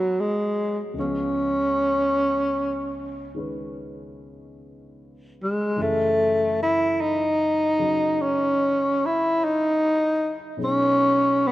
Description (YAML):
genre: jazz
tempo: 50 BPM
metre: 4/4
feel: swing 68% on 8ths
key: unclear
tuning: A4 = 441 Hz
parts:
  - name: growling tenor saxophone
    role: melody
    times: 0.0-11.5 s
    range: F#3 to E4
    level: -20 LUFS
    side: equal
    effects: none
  - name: warm concert grand piano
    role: accompaniment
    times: 0.0-11.5 s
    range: C#2 to B4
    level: -34 LUFS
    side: left 2 dB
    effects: none
room: moderate lush hall reverb, RT60 2.9 s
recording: rough home demo mix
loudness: -20 LUFS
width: side -15 dB against mid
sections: 0.0-11.5 A section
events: none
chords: 0.0 G#m7; 1.0 C#7; 5.8 F#m7; 10.6 B69